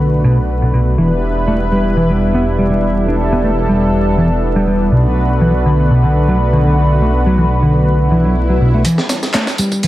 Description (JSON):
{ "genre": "breakbeat, breaks", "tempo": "122 BPM", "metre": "4/4", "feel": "swing 54% on 16ths", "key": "E minor", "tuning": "A4 = 442 Hz", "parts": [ { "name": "lush unison pad", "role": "sustained chords", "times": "0.0-9.9 s", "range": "G3 to B4", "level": "-17 LUFS", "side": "equal", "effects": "chorus, vintage 12-bit sampler grit, sidechain pumping" }, { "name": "picked electric bass", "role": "riff", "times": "0.0-9.9 s", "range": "B2 to D4", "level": "-14 LUFS", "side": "equal", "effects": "tube saturation, low-pass filter" }, { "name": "detuned saw bass", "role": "bass", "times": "0.0-8.8 s", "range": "E1 to B1", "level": "-16 LUFS", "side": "equal", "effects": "tube saturation" }, { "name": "swell", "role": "sound effects", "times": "8.0-8.8 s", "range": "none", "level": "-27 LUFS", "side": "left 1 dB", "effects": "none" }, { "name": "breakbeat sampler-style drum kit", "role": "drums", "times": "8.8-9.9 s", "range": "hi-hat, kick drum, snare drum", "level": "-18 LUFS", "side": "right 1 dB", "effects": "high-pass filter on hats, high-pass filter on kick, high-pass filter on snare, high-pass filter on room" }, { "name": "electronic tambourine and handclaps", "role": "drums", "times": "8.8-9.9 s", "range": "none", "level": "-22 LUFS", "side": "equal", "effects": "none" } ], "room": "light reverb, digital ambience", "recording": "vinyl crackle", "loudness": "-11 LUFS", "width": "side -15 dB against mid", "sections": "0.0-8.8 A section; 8.8-9.9 B section", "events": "swell 8.0-8.8; build-up 8.8-9.9; filter sweep on picked electric bass 8.8-9.9", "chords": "0.0 Bm7; 1.0 Em7; 4.9 Bm7; 8.8 Em7", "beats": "0.00 0.49 | 0.98 1.47 1.97 2.46 | 2.95 3.44 3.93 4.42 | 4.92 5.41 5.90 6.39 | 6.88 7.38 7.87 8.36 | 8.85 9.34 9.83" }